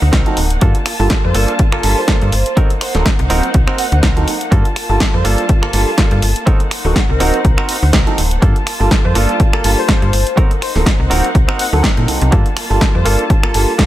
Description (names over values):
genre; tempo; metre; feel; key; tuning
filtered disco house; 123 BPM; 4/4; swing 55% on 16ths; G minor; A4 = 439 Hz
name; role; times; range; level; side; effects
dark studio violin section; sustained chords; 0.0-13.9 s; Bb3 to A5; -23 LUFS; left 1 dB; sidechain pumping, low-pass filter
slap-like FM bass; bass; 0.0-13.7 s; D1 to Bb2; -15 LUFS; equal; sidechain pumping, low-pass filter
egg shaker; percussion; 0.0-13.9 s; none; barely audible; none; none
direct-recorded clean electric guitar; riff; 0.1-13.9 s; Bb3 to Bb4; -24 LUFS; right 4 dB; sidechain pumping, low-pass filter
electronic kick drum; drums; 0.1-13.9 s; none; -13 LUFS; equal; none
punchy analog drum machine; drums; 0.1-13.9 s; finger snaps, hi-hat, snare drum; -20 LUFS; equal; sidechain pumping on hats
clear concert grand piano; accompaniment; 0.3-13.9 s; F#3 to A4; -21 LUFS; right 2 dB; phaser, sidechain pumping, low-pass filter
analog synth brass; melody; 1.2-13.0 s; F#4 to F#5; -25 LUFS; left 1 dB; chorus, sidechain pumping, low-pass filter, dub echo
room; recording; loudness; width
studio ambience; none; -11 LUFS; side -14 dB against mid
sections
0.0-13.9 A section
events
none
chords
0.0 D7b9b13; 0.6 Gm9; 2.6 D7b9b13; 4.5 Gm9; 6.5 D7b9b13; 8.4 Gm9; 10.4 D7b9b13; 12.3 Gm9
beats
0.13 | 0.62 1.11 1.59 2.08 | 2.57 3.06 3.54 4.03 | 4.52 5.01 5.50 5.98 | 6.47 6.96 7.45 7.93 | 8.42 8.91 9.40 9.89 | 10.37 10.86 11.35 11.84 | 12.32 12.81 13.30 13.79